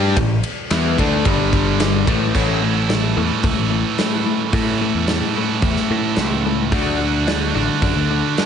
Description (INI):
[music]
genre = classic rock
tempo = 110 BPM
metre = 4/4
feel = straight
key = A mixolydian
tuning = A4 = 440 Hz
[part]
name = distorted electric guitar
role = riff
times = 0.0-8.5 s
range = G2 to G4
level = -21 LUFS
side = right 10 dB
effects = overdrive
[part]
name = overdriven electric guitar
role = riff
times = 0.0-8.5 s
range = G2 to G4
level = -21 LUFS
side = left 10 dB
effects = spring reverb
[part]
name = growling picked electric bass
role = bass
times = 0.0-8.2 s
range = G1 to A2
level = -22 LUFS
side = equal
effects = overdrive
[part]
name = big rock drum kit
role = drums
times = 0.2-8.5 s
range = crash cymbal, hi-hat, kick drum, ride cymbal, snare drum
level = -22 LUFS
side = right 1 dB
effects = none
[part]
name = group handclap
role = percussion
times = 0.7-1.9 s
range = none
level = -33 LUFS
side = left 5 dB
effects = none
[sound]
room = moderate studio reverb, RT60 0.6 s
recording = nothing above 10.3 kHz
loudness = -16 LUFS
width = side -8 dB against mid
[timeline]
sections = 0.0-2.4 A section; 2.4-8.5 B section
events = none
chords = 0.0 A5; 1.3 G5; 2.1 A5; 2.4 A; 6.7 D